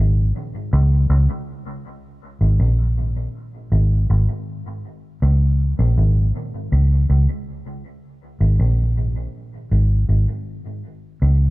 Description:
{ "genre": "reggae", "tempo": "80 BPM", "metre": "4/4", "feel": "straight", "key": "unclear", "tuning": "A4 = 439 Hz", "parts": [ { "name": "vintage muted fingered electric bass", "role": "solo", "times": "0.0-11.5 s", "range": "G#1 to C#2", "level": "-17 LUFS", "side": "equal", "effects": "dub echo" } ], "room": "light reverb", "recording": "none", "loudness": "-16 LUFS", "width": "side -20 dB against mid", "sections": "0.0-2.2 A section; 2.2-11.5 B section", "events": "none", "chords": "none", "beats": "0.71 1.46 | 2.21 2.96 3.71 4.46 | 5.21 5.96 6.71 7.46 | 8.21 8.96 9.71 10.45 | 11.20" }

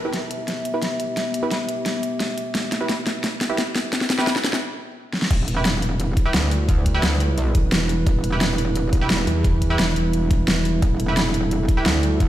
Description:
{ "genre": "dark technical drum and bass", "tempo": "174 BPM", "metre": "4/4", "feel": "straight", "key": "E minor", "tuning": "A4 = 435 Hz", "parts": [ { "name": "dark analog pad", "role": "sustained chords", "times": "0.0-12.3 s", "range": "G3 to E5", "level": "-27 LUFS", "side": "right 1 dB", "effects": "chorus, sidechain pumping" }, { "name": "band-passed chord stab", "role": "stabs", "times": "0.0-11.9 s", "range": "E4 to B4", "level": "-28 LUFS", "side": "right 2 dB", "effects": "chorus, digital delay" }, { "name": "dubstep drum kit", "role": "drums", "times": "0.1-12.3 s", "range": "crash cymbal, hi-hat, snare drum", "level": "-23 LUFS", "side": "equal", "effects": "overdrive, studio reverb" }, { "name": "metallic wobble bass", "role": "bass", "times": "5.3-12.3 s", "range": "E1 to D2", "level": "-22 LUFS", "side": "equal", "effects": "chorus, tube saturation, sidechain pumping" }, { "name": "electronic kick drum", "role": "drums", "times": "5.3-12.3 s", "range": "none", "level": "-20 LUFS", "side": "equal", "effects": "studio reverb" }, { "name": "metallic wobble bass", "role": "bass", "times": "7.7-10.8 s", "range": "E1 to E2", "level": "-21 LUFS", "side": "equal", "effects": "chorus" } ], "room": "light reverb", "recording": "played on a big sound system in a bare room, stone room reverb", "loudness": "-19 LUFS", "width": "side -13 dB against mid", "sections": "0.0-5.3 A section; 5.3-12.3 B section", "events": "build-up 0.0-5.3; drum fill 0.0-4.6, 5.1; filter sweep on synth stab 0.0-5.3; break 4.6-5.3; drop 5.3-12.3", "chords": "0.0 Em", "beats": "0.13 0.48 0.82 | 1.17 1.51 1.86 2.20 | 2.55 2.89 3.24 3.58 | 3.93 4.27 4.62 4.96 | 5.31 5.65 6.00 6.34 | 6.69 7.03 7.38 7.72 | 8.06 8.41 8.76 9.10 | 9.44 9.79 10.13 10.48 | 10.82 11.17 11.51 11.86 | 12.20" }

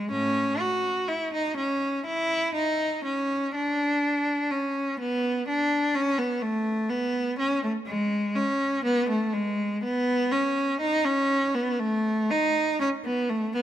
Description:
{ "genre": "classical, baroque-style suite movement for unaccompanied cello", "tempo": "61 BPM", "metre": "4/4", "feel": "rubato", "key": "unclear", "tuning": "A4 = 438 Hz", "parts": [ { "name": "rich cello", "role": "solo", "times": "0.0-13.6 s", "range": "A2 to F#4", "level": "-24 LUFS", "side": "equal", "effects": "none" } ], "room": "light reverb", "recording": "close, detailed microphones", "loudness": "-24 LUFS", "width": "side -11 dB against mid", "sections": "0.0-13.6 A section", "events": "none", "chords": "none", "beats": "| 0.12 1.08 2.06 3.04 | 4.03 5.00 5.95 6.89 | 7.86 8.84 9.82 10.80 | 11.79 12.79" }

